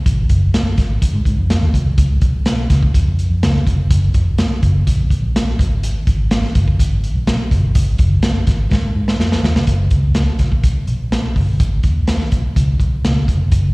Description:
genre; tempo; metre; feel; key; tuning
uptempo 1960s-style soul; 125 BPM; 4/4; straight; unclear; A4 = 440 Hz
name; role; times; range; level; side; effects
vintage muted fingered electric bass; bass; 0.1-13.7 s; E#1 to G#2; -16 LUFS; equal; none
crunchy breakbeat drum kit; drums; 0.1-13.6 s; hi-hat, kick drum, snare drum; -16 LUFS; equal; none
room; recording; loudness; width
little or no reverb; live gig heard through the venue's PA, recital hall reverb; -13 LUFS; side -26 dB against mid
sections
0.0-9.7 A section; 9.7-13.7 B section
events
drum fill 8.7-9.7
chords
none

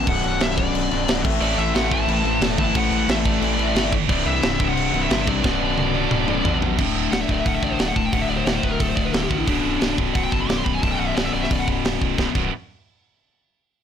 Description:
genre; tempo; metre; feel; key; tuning
heavy metal; 178 BPM; 4/4; straight; B phrygian; A4 = 440 Hz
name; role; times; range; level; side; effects
high-gain lead guitar; melody; 0.0-11.6 s; D4 to D6; -26 LUFS; left 1 dB; distortion
distorted electric guitar; riff; 0.0-12.5 s; B1 to A3; -25 LUFS; left 11 dB; distortion
thick fuzz guitar; riff; 0.0-6.8 s; B1 to A4; -27 LUFS; right 1 dB; distortion
round analog bass; bass; 0.0-12.5 s; B0 to C2; -27 LUFS; right 1 dB; none
tight metal drum kit; drums; 0.1-12.4 s; crash cymbal, hi-hat, kick drum, snare drum, toms; -24 LUFS; right 1 dB; soft clipping on kick
scooped high-gain guitar; riff; 1.4-12.5 s; B1 to A3; -26 LUFS; right 15 dB; distortion
room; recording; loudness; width
light reverb; blown-out, overdriven recording, overdrive; -18 LUFS; side -8 dB against mid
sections
0.0-6.8 A section; 6.8-12.2 B section; 12.2-13.5 C section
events
drum fill 5.4-6.8; lead electric guitar solo 6.8-12.2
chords
0.0 Bm; 1.2 Am; 4.1 C; 5.4 Bm; 6.8 D5; 9.5 B5

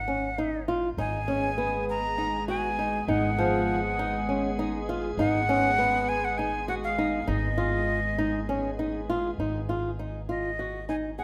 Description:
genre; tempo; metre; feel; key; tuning
contemporary instrumental, chamber music in an uneven meter; 200 BPM (eighths); 7/8; straight; G# dorian; A4 = 440 Hz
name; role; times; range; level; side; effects
breathy bright jazz flute; melody; 0.0-11.2 s; D#5 to A#5; -31 LUFS; equal; none
upright bass; bass; 0.0-11.2 s; G#1; -36 LUFS; equal; none
flamenco guitar; arpeggios; 0.1-11.2 s; E#3 to G#4; -32 LUFS; equal; none
soft additive organ-like pad; sustained chords; 1.2-9.3 s; G#3 to G#4; -37 LUFS; equal; ensemble chorus, built-in reverb
room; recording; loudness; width
moderate scoring stage reverb, RT60 1.4 s; none; -28 LUFS; mono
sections
0.0-9.4 A section; 9.4-11.2 B section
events
none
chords
0.0 G#m7; 9.4 G#5

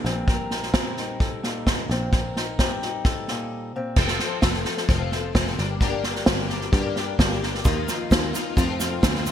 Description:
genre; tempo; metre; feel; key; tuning
indie folk with a building arrangement; 130 BPM; 4/4; straight; unclear; A4 = 440 Hz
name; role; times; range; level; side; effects
fingerpicked acoustic archtop guitar; accompaniment; 0.0-4.0 s; Bb2 to Bb4; -30 LUFS; left 2 dB; none
picked electric bass; bass; 0.0-9.3 s; F1 to G2; -28 LUFS; equal; none
unplugged drum kit; drums; 0.1-9.3 s; crash cymbal, kick drum, snare drum; -23 LUFS; equal; none
picked plugged-in twelve-string acoustic guitar; accompaniment; 4.0-9.3 s; F2 to A4; -28 LUFS; left 6 dB; ensemble chorus
felt-muted upright piano; accompaniment; 7.6-9.3 s; F1 to Bb4; -33 LUFS; right 6 dB; none
tube shaker; percussion; 7.6-9.3 s; none; -36 LUFS; right 12 dB; none
room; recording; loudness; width
light reverb, small room ambience; bright 1980s-style digital production; -21 LUFS; side -10 dB against mid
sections
0.0-4.0 A section; 4.0-9.3 B section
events
break 3.5-4.0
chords
0.0 Eb6/Bb; 4.0 F; 5.6 Gm; 7.6 Ebsus2; 8.6 F

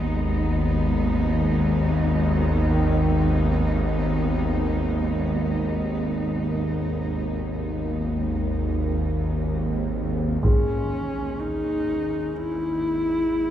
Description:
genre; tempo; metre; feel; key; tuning
dark ambient drone; free time; none; none; G# minor; A4 = 439 Hz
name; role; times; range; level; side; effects
warm studio cello section; sustained chords; 0.0-10.4 s; G#3 to D#4; -31 LUFS; right 1 dB; none
bowed-like drone; drone; 0.0-13.5 s; G#1 to D#2; -23 LUFS; equal; built-in reverb
clear concert grand piano; arpeggios; 2.7-10.5 s; D#3; -36 LUFS; left 3 dB; none
dark horsehead fiddle; melody; 10.4-13.5 s; C#4 to E4; -25 LUFS; left 1 dB; none
taiko ensemble; percussion; 10.4-10.6 s; none; -25 LUFS; equal; low-pass filter on perc
bronze singing bowl; texture; 10.4-13.5 s; G#4; -30 LUFS; left 2 dB; none
room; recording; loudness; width
wet cathedral reverb, RT60 5.1 s; dark, warm production; -21 LUFS; side -11 dB against mid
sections
0.0-10.4 A section; 10.4-13.5 B section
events
fade-out on cello section 0.0-10.4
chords
0.0 G#m; 10.4 G#5

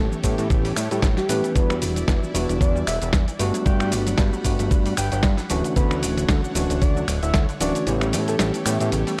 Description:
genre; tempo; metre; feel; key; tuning
nu-disco, nu disco; 114 BPM; 4/4; swing 56% on 16ths; unclear; A4 = 438 Hz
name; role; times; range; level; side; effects
soft octave-layered synth lead; melody; 0.0-8.5 s; G4 to G5; -32 LUFS; equal; chorus, phaser, analog delay
tine electric piano; accompaniment; 0.0-9.2 s; E3 to B4; -28 LUFS; equal; sidechain pumping
lush unison pad; sustained chords; 0.0-9.2 s; D3 to B5; -37 LUFS; equal; chorus, sidechain pumping
unison pluck; arpeggios; 0.0-9.1 s; C#3 to B3; -37 LUFS; equal; none
fat analog bass; bass; 0.0-9.0 s; D1 to A2; -27 LUFS; equal; tube saturation
dusty soul sampler-style drum kit; drums; 0.1-9.2 s; finger snaps, hi-hat, shaker, snare drum; -30 LUFS; equal; none
electronic kick drum; drums; 0.2-7.5 s; none; -23 LUFS; equal; none
room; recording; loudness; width
little or no reverb; dry, gritty hardware recording, cassette tape; -22 LUFS; mono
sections
0.0-9.2 A section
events
kick drops out 7.9-9.2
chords
0.0 A7; 1.6 Em7; 3.4 Gmaj7; 5.5 Dmaj7; 7.9 A7

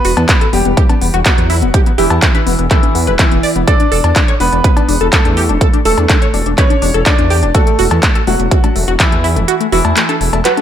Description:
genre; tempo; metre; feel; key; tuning
progressive house; 124 BPM; 4/4; straight; unclear; A4 = 441 Hz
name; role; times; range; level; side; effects
clear concert grand piano; melody; 0.0-10.6 s; E3 to D5; -17 LUFS; equal; ping-pong delay
tight sequenced synth; arpeggios; 0.0-10.6 s; A3 to D5; -17 LUFS; left 2 dB; chorus, sidechain pumping, ping-pong delay
dark detuned saw bass; bass; 0.0-10.4 s; E1 to E2; -15 LUFS; equal; sidechain pumping
deep house drum kit; drums; 0.0-10.6 s; handclaps, hi-hat; -17 LUFS; right 1 dB; none
cowbell and congas; percussion; 0.2-10.6 s; none; -22 LUFS; left 3 dB; sidechain pumping on perc
electronic kick drum; drums; 0.3-9.1 s; none; -12 LUFS; equal; none
reverse cymbal; sound effects; 10.6 s; none; -34 LUFS; right 3 dB; none
room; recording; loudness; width
light reverb; none; -9 LUFS; side -10 dB against mid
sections
0.0-10.6 A section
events
kick drops out 9.5-10.6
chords
0.0 Emadd9; 3.7 D/E

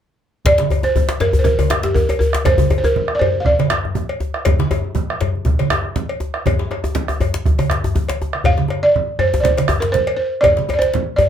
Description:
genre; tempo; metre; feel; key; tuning
west african traditional, West African drum ensemble; 120 BPM; 4/4; straight; unclear; A4 = 440 Hz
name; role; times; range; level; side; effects
bombo; percussion; 0.4-10.6 s; none; -21 LUFS; right 1 dB; none
balafon; melody; 0.5-4.2, 8.5-11.3 s; G4 to F5; -16 LUFS; right 2 dB; plate reverb
congas; percussion; 0.5-11.1 s; none; -23 LUFS; right 4 dB; none
cowbell; percussion; 0.5-11.3 s; none; -25 LUFS; left 3 dB; none
djembe; percussion; 0.5-11.3 s; none; -22 LUFS; left 4 dB; none
djembe; percussion; 0.5-11.3 s; none; -21 LUFS; left 2 dB; none
room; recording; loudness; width
wet small room reverb, RT60 0.5 s; heard from further back in the room; -15 LUFS; side -9 dB against mid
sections
0.5-11.3 A section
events
none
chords
none

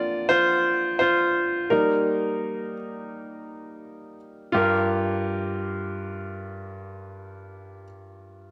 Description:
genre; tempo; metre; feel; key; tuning
pop; 85 BPM; 4/4; straight; G minor; A4 = 435 Hz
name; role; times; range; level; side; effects
clear concert grand piano; accompaniment; 0.0-8.5 s; G2 to D5; -26 LUFS; equal; none
room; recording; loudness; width
moderate echo chamber reverb, RT60 2.1 s; none; -24 LUFS; mono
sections
0.0-4.5 A section; 4.5-7.4 B section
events
grand piano solo 0.0-4.5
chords
0.0 Bbadd9; 1.7 Eb; 4.5 Gm7

